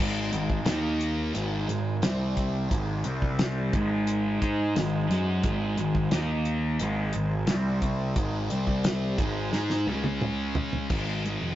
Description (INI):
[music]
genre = psychedelic rock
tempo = 88 BPM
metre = 4/4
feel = straight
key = Ab major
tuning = A4 = 440 Hz
[part]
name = hand-pumped harmonium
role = sustained chords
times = 0.0-11.6 s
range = G3 to Bb5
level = -37 LUFS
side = right 4 dB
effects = none
[part]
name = thick fuzz guitar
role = riff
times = 0.0-11.6 s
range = Ab2 to Ab4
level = -29 LUFS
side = left 1 dB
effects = distortion, phaser
[part]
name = fuzz picked electric bass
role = bass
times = 0.0-11.6 s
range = F1 to Ab2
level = -29 LUFS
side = equal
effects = overdrive
[part]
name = damped 70s drum kit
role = drums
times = 0.3-11.4 s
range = crash cymbal, hi-hat, kick drum, snare drum, toms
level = -29 LUFS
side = equal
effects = none
[sound]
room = light reverb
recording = rough rehearsal-room recording, nothing above 7.7 kHz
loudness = -25 LUFS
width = side -13 dB against mid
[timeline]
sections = 0.0-10.9 A section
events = drum fill 9.5-10.9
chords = 0.0 Ab; 0.7 Eb5; 1.4 Ab; 2.0 C5; 2.7 Ab; 3.1 C5; 3.7 Ab; 6.1 Eb5; 6.8 Ab; 7.5 C5; 8.2 Ab; 8.5 C5; 9.2 Ab; 9.9 Db5; 10.9 Ab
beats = 0.67 1.35 2.03 | 2.71 3.40 4.08 4.76 | 5.44 6.12 6.80 7.49 | 8.17 8.86 9.54 10.22 | 10.91